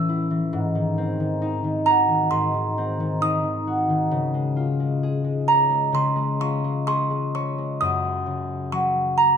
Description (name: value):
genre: children's music, lullaby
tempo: 66 BPM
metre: 4/4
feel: rubato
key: Db major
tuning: A4 = 440 Hz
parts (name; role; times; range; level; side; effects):
- music box; melody; 0.0-9.4 s; Bb5 to E6; -22 LUFS; right 3 dB; none
- concert harp; accompaniment; 0.0-9.4 s; Gb2 to Db5; -23 LUFS; left 2 dB; none
room: moderate recital hall reverb, RT60 1.4 s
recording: dark, warm production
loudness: -20 LUFS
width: side -7 dB against mid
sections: 0.0-7.8 A section; 7.8-9.4 B section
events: none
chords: 0.0 A; 0.5 Ab7; 4.1 Db; 7.8 Gb5